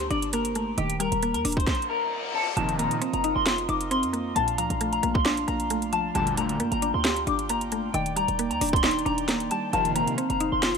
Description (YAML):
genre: hip hop, trap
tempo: 134 BPM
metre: 4/4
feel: half-time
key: unclear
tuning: A4 = 440 Hz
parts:
  - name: clean electric guitar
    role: melody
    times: 0.0-10.8 s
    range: G4 to D6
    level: -27 LUFS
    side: left 3 dB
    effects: analog chorus
  - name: mallet-like synth pluck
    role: accompaniment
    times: 0.0-10.8 s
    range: Bb2 to G4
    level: -29 LUFS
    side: equal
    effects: chorus
  - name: short 808-style bass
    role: bass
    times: 0.0-10.8 s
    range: Eb1 to G2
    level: -33 LUFS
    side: right 1 dB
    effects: none
  - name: trap drum kit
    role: drums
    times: 0.0-10.8 s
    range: hi-hat, kick drum, snare drum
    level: -28 LUFS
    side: right 1 dB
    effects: overdrive
  - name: reverse cymbal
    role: sound effects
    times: 1.8-2.6 s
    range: none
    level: -36 LUFS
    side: left 4 dB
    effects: none
  - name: pipe organ, flutes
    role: sustained chords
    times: 2.6-10.8 s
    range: Eb3 to G5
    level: -36 LUFS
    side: right 3 dB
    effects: none
  - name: big bright polysynth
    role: stabs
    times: 2.6-3.0, 6.2-6.6, 9.7-10.2 s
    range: D2 to Eb3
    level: -31 LUFS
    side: right 2 dB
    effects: none
room: light reverb, digital ambience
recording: none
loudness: -23 LUFS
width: side -6 dB against mid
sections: 0.0-2.6 A section; 2.6-10.8 B section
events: reverse cymbal 1.8-2.6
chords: 0.0 Gmadd9; 0.8 Ebmaj7; 2.6 F7sus4; 4.4 Bbmaj7; 6.2 Gmadd9; 7.9 Ebmaj7; 9.7 F7sus4